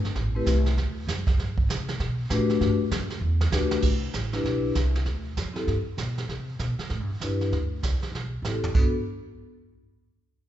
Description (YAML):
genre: jazz, small-group swing and bop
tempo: 196 BPM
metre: 4/4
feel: swing 63% on 8ths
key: G major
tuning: A4 = 437 Hz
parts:
  - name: upright bass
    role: bass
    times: 0.0-8.9 s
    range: G1 to C3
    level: -27 LUFS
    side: right 1 dB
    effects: none
  - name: vintage brush drum kit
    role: drums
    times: 0.0-8.8 s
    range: brushed snare drum, china cymbal, crash cymbal, hi-hat, kick drum, snare drum, toms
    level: -29 LUFS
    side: right 2 dB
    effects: none
  - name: vibraphone with medium mallets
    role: accompaniment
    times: 0.3-8.9 s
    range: A3 to B4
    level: -28 LUFS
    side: left 4 dB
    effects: none
room: moderate recital hall reverb, RT60 1.5 s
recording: recorded in a church or concert hall, nothing above 7.9 kHz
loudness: -24 LUFS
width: side -12 dB against mid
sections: 0.0-3.8 A section; 3.8-8.7 B section; 8.7-10.0 C section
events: drum fill 3.2-3.8, 8.1-8.7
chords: 0.2 Am9; 0.8 D; 1.4 Gmaj7; 3.8 Cmaj7; 5.1 D7sus4; 6.3 Cmaj7; 7.5 D7sus4; 8.7 Gmaj7